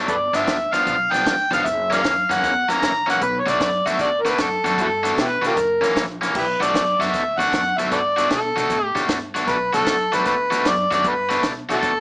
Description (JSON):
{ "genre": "electric blues shuffle", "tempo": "153 BPM", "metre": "4/4", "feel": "swing 67% on 8ths", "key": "B minor", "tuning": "A4 = 440 Hz", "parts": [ { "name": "overdriven electric guitar", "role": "riff", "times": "0.0-11.9 s", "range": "F#2 to F#4", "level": "-22 LUFS", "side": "left 1 dB", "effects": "none" }, { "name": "upright bass", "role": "bass", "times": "0.0-12.0 s", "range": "F1 to B2", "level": "-32 LUFS", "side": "equal", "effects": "none" }, { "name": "overdriven harmonica", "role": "melody", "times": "0.1-12.0 s", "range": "E4 to A#5", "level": "-19 LUFS", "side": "equal", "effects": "none" }, { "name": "compact cocktail drum kit", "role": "drums", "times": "0.1-11.9 s", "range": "crash cymbal, hi-hat, kick drum, snare drum", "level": "-27 LUFS", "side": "equal", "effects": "none" } ], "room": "moderate studio reverb, RT60 0.7 s", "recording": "small speaker sound", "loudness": "-17 LUFS", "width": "side -26 dB against mid", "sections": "0.0-6.3 A section; 6.3-12.0 A section", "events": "none", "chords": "0.1 G7; 1.6 F#7; 3.2 Bm7; 5.6 F#7; 6.3 Bm7" }